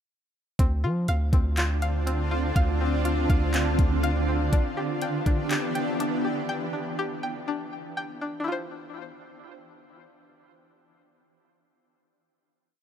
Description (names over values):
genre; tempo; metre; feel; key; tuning
hip hop, atmospheric cloud-rap; 122 BPM; 4/4; half-time; D dorian; A4 = 440 Hz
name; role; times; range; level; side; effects
shimmering ambient pad; sustained chords; 1.6-6.5 s; D3 to G4; -29 LUFS; right 1 dB; chorus, built-in reverb, sidechain pumping
string-like resonator pluck; arpeggios; 0.6-11.9 s; C4 to G5; -33 LUFS; left 2 dB; chorus, ping-pong delay
long sustained 808-style bass; bass; 0.6-4.5 s; D2 to F3; -25 LUFS; equal; none
smooth R&B drum kit; drums; 0.6-6.1 s; handclaps, hi-hat, kick drum; -24 LUFS; equal; none
room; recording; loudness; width
light reverb; none; -24 LUFS; side -9 dB against mid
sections
0.6-8.5 verse; 8.5-12.4 final chord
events
none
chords
0.6 Dm7; 4.5 Em7; 8.5 Dm9